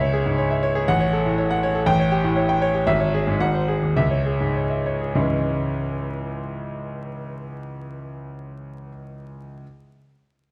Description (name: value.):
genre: classical, virtuoso piano study.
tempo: 98-123 BPM.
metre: 2/4.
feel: rubato.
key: C# minor.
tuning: A4 = 437 Hz.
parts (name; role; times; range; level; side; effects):
warm concert grand piano; solo; 0.0-9.6 s; G#1 to G5; -23 LUFS; equal; none.
room: moderate recital hall reverb, RT60 1.5 s.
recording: vinyl crackle.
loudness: -22 LUFS.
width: mono.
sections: 0.0-5.2 A section; 5.2-7.4 B section.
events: slowing down 2.4-5.2.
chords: 0.0 C#m; 0.9 F#m/A; 1.9 A7; 2.9 C#m/G#; 3.4 G#7; 4.0 C#m.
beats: 0.39 | 0.88 1.38 | 1.87 2.36 | 2.87 3.40 | 3.97 4.55 | 5.15 5.72 | 6.29 6.85.